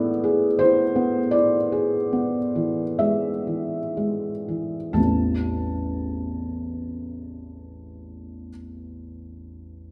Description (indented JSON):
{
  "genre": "classical, romantic nocturne for solo piano",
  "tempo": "29-44 BPM",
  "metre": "4/4",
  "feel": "rubato",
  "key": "A minor",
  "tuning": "A4 = 441 Hz",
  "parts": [
    { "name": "felt-muted upright piano", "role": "solo", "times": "0.0-9.9 s", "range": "A1 to A5", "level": "-25 LUFS", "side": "equal", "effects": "none" }
  ],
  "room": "wet recital hall reverb, RT60 1.4 s",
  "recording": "none",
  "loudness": "-23 LUFS",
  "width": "mono",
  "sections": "0.0-5.0 A section; 5.0-9.9 B section",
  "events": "slowing down 0.0-5.0",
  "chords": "0.0 E7/A; 5.0 Am"
}